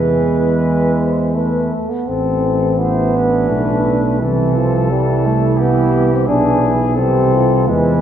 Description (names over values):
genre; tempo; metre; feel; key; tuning
classical, hymn-like piece for brass band; 80-88 BPM; 3/4; rubato; A minor; A4 = 435 Hz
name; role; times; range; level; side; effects
dark cornet; melody; 0.0-8.0 s; G4 to C5; -21 LUFS; left 3 dB; none
mellow French horn section; second line; 0.0-8.0 s; C4 to C5; -22 LUFS; right 7 dB; none
brilliant trombone; accompaniment; 0.0-8.0 s; E3; -24 LUFS; right 3 dB; none
warm euphonium; accompaniment; 0.0-8.0 s; E3 to D4; -18 LUFS; left 2 dB; none
dark tuba; bass; 0.0-8.0 s; A1 to E2; -17 LUFS; right 1 dB; none
room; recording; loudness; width
wet recital hall reverb, RT60 1.7 s; heard from further back in the room; -13 LUFS; side -9 dB against mid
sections
0.0-8.0 A section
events
none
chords
0.0 E; 2.1 Am; 4.2 Am/C; 6.3 E7/B; 7.0 Am/C